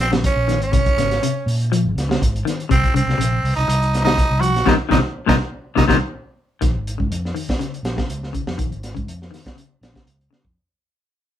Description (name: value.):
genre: afrobeat.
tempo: 122 BPM.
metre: 4/4.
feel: swing 53% on 16ths.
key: Bb minor.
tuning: A4 = 442 Hz.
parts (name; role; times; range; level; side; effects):
growling tenor saxophone; melody; 0.0-6.0 s; C4 to Gb4; -21 LUFS; right 3 dB; none.
fingered electric bass; bass; 0.0-10.5 s; Ab1 to Bb2; -22 LUFS; equal; none.
crunchy breakbeat drum kit; drums; 0.0-10.6 s; hi-hat, kick drum, snare drum; -21 LUFS; equal; none.
semi-hollow electric guitar; arpeggios; 0.1-10.5 s; Bb2 to F3; -22 LUFS; left 5 dB; tremolo.
room: moderate studio reverb, RT60 0.5 s.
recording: band playing live in one room.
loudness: -17 LUFS.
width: side -11 dB against mid.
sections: 0.0-6.6 A section; 6.6-10.6 B section.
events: band accent 4.7-6.6; drum fill 6.1-6.6, 10.3; fade-out 6.6-10.6.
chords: 0.0 Bbm9; 2.7 Bbsus24; 6.6 Bbm7 (rootless).